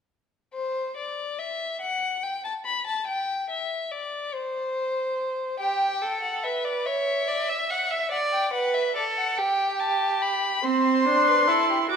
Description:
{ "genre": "classical, baroque-style fugue for string quartet", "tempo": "48 BPM (dotted quarters)", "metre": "6/8", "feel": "straight", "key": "C major", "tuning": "A4 = 440 Hz", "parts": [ { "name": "rich violin", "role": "melody", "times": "0.5-12.0 s", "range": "C5 to D6", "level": "-26 LUFS", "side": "left 4 dB", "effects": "none" }, { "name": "warm violin", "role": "second line", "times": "5.6-12.0 s", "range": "G4 to Gb5", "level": "-25 LUFS", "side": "right 2 dB", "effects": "none" }, { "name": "warm viola", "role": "accompaniment", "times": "10.6-12.0 s", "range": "C4 to F#4", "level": "-22 LUFS", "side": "right 6 dB", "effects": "none" } ], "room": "moderate scoring stage reverb, RT60 1.6 s", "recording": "minimal, uncompressed stereo recording", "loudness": "-23 LUFS", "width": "side -6 dB against mid", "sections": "0.5-12.0 A section", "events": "none", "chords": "0.5 N.C.; 5.6 G; 6.9 Dbm; 8.1 D; 9.4 G; 10.6 C" }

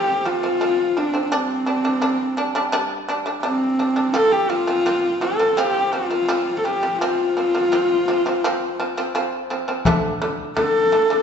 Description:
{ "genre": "mongolian traditional, Mongolian folk", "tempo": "84 BPM", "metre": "4/4", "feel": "straight", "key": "F gong mode", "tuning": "A4 = 441 Hz", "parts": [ { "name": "dark horsehead fiddle", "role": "melody", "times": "0.0-11.2 s", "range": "C4 to A4", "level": "-19 LUFS", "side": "left 1 dB", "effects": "none" }, { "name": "shamisen", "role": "arpeggios", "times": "0.0-11.2 s", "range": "D3 to D4", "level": "-23 LUFS", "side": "right 1 dB", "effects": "none" }, { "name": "frame drum", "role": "percussion", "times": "9.9-11.0 s", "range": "none", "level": "-22 LUFS", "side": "left 2 dB", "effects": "none" } ], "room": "wet recital hall reverb, RT60 1.3 s", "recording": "recorded in a church or concert hall, nothing above 7.9 kHz, faint mains hum", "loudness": "-18 LUFS", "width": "side -7 dB against mid", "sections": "0.0-9.9 A section; 9.9-11.2 B section", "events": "none", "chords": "0.0 F5; 1.3 G5; 4.2 F5; 9.9 D5" }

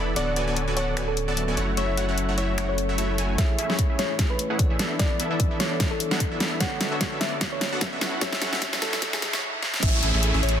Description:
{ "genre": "future bass", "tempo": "149 BPM", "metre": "4/4", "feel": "swing 55% on 16ths, half-time", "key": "A major", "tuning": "A4 = 439 Hz", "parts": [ { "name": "thumb-piano-like synth pluck", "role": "melody", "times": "0.0-10.6 s", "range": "G#4 to F#5", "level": "-32 LUFS", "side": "left 1 dB", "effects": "chorus, sidechain pumping, ping-pong delay" }, { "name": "bell-like tine electric piano", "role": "accompaniment", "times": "0.0-9.8 s", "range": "D3 to E5", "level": "-33 LUFS", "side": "left 3 dB", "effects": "auto-pan, sidechain pumping, ping-pong delay" }, { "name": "airy breathy pad", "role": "sustained chords", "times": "0.0-10.6 s", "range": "D3 to A4", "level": "-39 LUFS", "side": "equal", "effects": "none" }, { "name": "supersaw stab", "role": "riff", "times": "0.0-10.6 s", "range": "A3 to B5", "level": "-29 LUFS", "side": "right 1 dB", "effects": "sidechain pumping, low-pass filter" }, { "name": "saturated sub bass", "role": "bass", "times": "0.0-10.6 s", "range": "D1 to A2", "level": "-28 LUFS", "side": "equal", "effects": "sidechain pumping, high-pass filter" }, { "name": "dubstep drum kit", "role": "drums", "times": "0.2-10.6 s", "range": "crash cymbal, finger snaps, hi-hat, snare drum", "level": "-27 LUFS", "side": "equal", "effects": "none" }, { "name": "swell, riser and downlifter", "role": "sound effects", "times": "2.7-10.6 s", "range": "none", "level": "-33 LUFS", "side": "equal", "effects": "none" }, { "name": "electronic kick drum", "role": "drums", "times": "3.4-9.9 s", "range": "none", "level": "-25 LUFS", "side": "equal", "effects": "none" } ], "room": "light reverb, digital ambience", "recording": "dense, heavily limited modern master, high-pass filter", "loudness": "-22 LUFS", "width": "side -9 dB against mid", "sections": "0.0-3.4 A section; 3.4-9.8 B section", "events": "swell 2.7-3.4; build-up 3.4-9.8; drum fill 3.4-9.4, 9.6; filter sweep on supersaw synth 3.4-9.8; filter sweep 3.4-9.8", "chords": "0.2 Bm7/D; 1.6 F#m7; 3.4 Amaj7; 4.8 E7sus4; 6.6 Bm7/D; 8.0 F#m7; 9.8 Amaj7" }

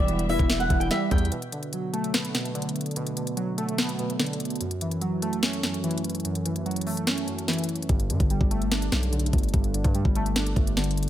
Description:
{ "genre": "hip hop, trap", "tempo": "146 BPM", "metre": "4/4", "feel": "half-time", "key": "B minor", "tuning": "A4 = 440 Hz", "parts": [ { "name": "flamenco guitar", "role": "melody", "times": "0.0-1.3 s", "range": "D5 to G5", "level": "-29 LUFS", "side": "right 1 dB", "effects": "none" }, { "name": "warbly lo-fi synth keys", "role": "accompaniment", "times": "0.0-11.1 s", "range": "F#2 to E5", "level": "-28 LUFS", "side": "right 1 dB", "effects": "chorus" }, { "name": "muted studio string section", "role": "sustained chords", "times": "0.0-1.3 s", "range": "E3 to E5", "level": "-38 LUFS", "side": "left 2 dB", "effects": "none" }, { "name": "distorted 808-style bass", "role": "bass", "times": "0.0-1.3, 7.9-11.1 s", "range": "E1 to G2", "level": "-27 LUFS", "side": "equal", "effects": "distortion" }, { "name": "trap drum kit", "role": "drums", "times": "0.1-11.1 s", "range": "hi-hat, kick drum, snare drum", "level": "-26 LUFS", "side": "equal", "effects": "none" } ], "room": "digital ambience", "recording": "none", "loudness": "-23 LUFS", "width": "side -12 dB against mid", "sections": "0.0-1.3 A section; 1.3-11.1 B section", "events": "break 1.3-7.9", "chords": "0.0 Em; 1.3 Bm7; 4.6 F#m7; 7.9 Gsus2" }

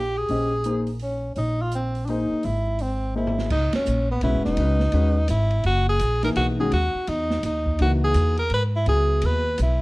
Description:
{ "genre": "modal jazz", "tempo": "168 BPM", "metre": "3/4", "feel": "swing 64% on 8ths", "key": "Bb dorian, C# dorian from 3.5 s", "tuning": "A4 = 440 Hz", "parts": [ { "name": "clear tenor saxophone", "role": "melody", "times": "0.0-9.8 s", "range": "B3 to B4", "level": "-25 LUFS", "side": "equal", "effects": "none" }, { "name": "upright bass", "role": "bass", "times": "0.0-9.8 s", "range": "E1 to G#2", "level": "-23 LUFS", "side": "equal", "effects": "none" }, { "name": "warm grand piano", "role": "accompaniment", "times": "0.3-9.4 s", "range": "D#3 to Eb5", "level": "-27 LUFS", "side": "left 2 dB", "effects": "none" }, { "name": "open jazz drum kit", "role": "drums", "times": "0.3-9.7 s", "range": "crash cymbal, hi-hat, kick drum, ride cymbal, snare drum, toms", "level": "-32 LUFS", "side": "right 1 dB", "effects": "none" } ], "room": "light reverb", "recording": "dark, warm production", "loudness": "-20 LUFS", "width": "side -21 dB against mid", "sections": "0.0-3.5 A section; 3.5-9.8 B section", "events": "drum fill 3.2-3.5; band accent 3.7", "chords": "0.0 Bbm9; 1.4 Bb9sus4; 2.4 Ab; 3.5 C#m9; 5.7 B; 7.8 C#m9" }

